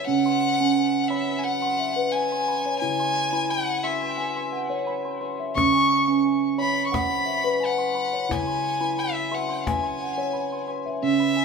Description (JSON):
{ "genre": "world meditative, meditative tuned percussion", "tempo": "88 BPM", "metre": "4/4", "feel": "straight", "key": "C# minor pentatonic", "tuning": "A4 = 440 Hz", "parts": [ { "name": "rich violin", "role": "melody", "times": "0.0-11.4 s", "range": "E5 to C#6", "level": "-25 LUFS", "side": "left 3 dB", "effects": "plate reverb, diffuse ambient delay" }, { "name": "steel tongue drum", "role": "arpeggios", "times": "0.0-11.4 s", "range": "C#3 to B#5", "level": "-24 LUFS", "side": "right 3 dB", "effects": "none" }, { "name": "cajon", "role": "percussion", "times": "5.6-10.9 s", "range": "none", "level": "-30 LUFS", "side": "left 4 dB", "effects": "none" } ], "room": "wet small room reverb, RT60 0.5 s", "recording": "none", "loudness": "-22 LUFS", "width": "side -5 dB against mid", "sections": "0.1-11.0 A section", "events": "none", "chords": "0.1 C#m" }